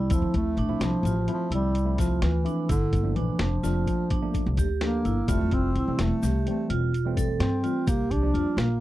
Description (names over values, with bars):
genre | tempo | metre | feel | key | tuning
progressive instrumental, band music in an uneven meter | 255 BPM (eighths) | 11/8 | straight | G dorian | A4 = 441 Hz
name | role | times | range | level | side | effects
breathy bass clarinet | melody | 0.0-8.8 s | D3 to D4 | -28 LUFS | left 1 dB | none
vibraphone with medium hard mallets | arpeggios | 0.0-8.7 s | D4 to A4 | -32 LUFS | right 9 dB | none
upright bass | bass | 0.0-8.8 s | E1 to D3 | -27 LUFS | equal | none
tine electric piano | accompaniment | 0.1-8.7 s | E3 to A4 | -33 LUFS | left 2 dB | overdrive, medium stereo tremolo
boom bap sampler-style drum kit | drums | 0.1-8.7 s | hi-hat, kick drum, snare drum | -29 LUFS | equal | none
tube shaker | percussion | 0.1-8.7 s | none | -47 LUFS | left 11 dB | none
room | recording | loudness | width
little or no reverb | dry, close 1970s-style studio recording | -23 LUFS | side -15 dB against mid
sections
0.0-8.8 A section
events
none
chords
0.1 Dm7; 2.7 Gm7; 5.3 Fmaj7; 7.9 C7sus4